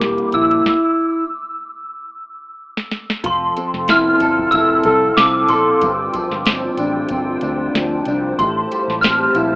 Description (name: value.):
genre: indie pop, bedroom pop.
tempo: 93 BPM.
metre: 4/4.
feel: swing 55% on 16ths.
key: F major.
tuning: A4 = 440 Hz.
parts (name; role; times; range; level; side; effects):
glockenspiel with soft plastic mallets; melody; 0.0-9.6 s; C6 to F6; -18 LUFS; equal; ensemble chorus.
electric guitar through a small old amp; accompaniment; 0.0-9.6 s; G2 to A4; -18 LUFS; equal; analog chorus, warbly pitch drift.
vintage muted fingered electric bass; bass; 0.0-9.6 s; E1 to D2; -30 LUFS; equal; none.
soft vintage rhythm box; drums; 0.0-9.6 s; hi-hat, kick drum, snare drum; -20 LUFS; equal; none.
hollow soft pad; sustained chords; 3.2-9.6 s; C4 to A5; -25 LUFS; equal; ensemble chorus.
tambourine; percussion; 3.2-9.5 s; none; -43 LUFS; right 1 dB; none.
room: light reverb.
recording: rough home demo mix, AM radio sound.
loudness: -14 LUFS.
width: side -24 dB against mid.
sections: 0.0-3.2 A section; 3.2-9.6 B section.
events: stop 0.7-3.2; drum fill 2.0-3.2.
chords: 0.0 C7; 3.2 Fmaj7; 5.8 G7sus4; 8.4 Am7.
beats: 0.01 | 0.66 1.30 1.95 2.60 | 3.24 3.89 4.53 5.18 | 5.82 6.46 7.11 7.75 | 8.40 9.04.